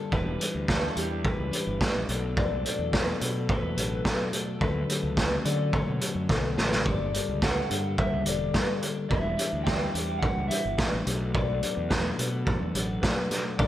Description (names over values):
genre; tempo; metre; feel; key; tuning
indie rock; 107 BPM; 4/4; straight; unclear; A4 = 441 Hz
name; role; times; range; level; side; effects
twelve-string electric guitar; riff; 0.0-13.7 s; G2 to B4; -32 LUFS; left 3 dB; spring reverb
electric guitar through a small old amp; melody; 0.1-13.7 s; G4 to G5; -34 LUFS; left 1 dB; none
fuzz fingered electric bass; bass; 0.1-13.7 s; E1 to D3; -32 LUFS; right 1 dB; overdrive
raw garage drum kit; drums; 0.1-13.7 s; hi-hat, kick drum, snare drum; -27 LUFS; right 1 dB; none
room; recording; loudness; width
light reverb, small room ambience; none; -25 LUFS; side -13 dB against mid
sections
0.0-13.7 A section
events
drum fill 6.3-6.9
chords
0.1 Em7; 2.1 Bm7; 4.6 Dmaj7; 6.9 Gmadd9; 9.1 Em7; 11.1 Bm7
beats
| 0.12 0.69 1.25 1.81 | 2.37 2.93 3.49 4.05 | 4.61 5.17 5.74 6.30 | 6.86 7.42 7.98 8.54 | 9.11 9.67 10.23 10.79 | 11.35 11.91 12.47 13.04 | 13.60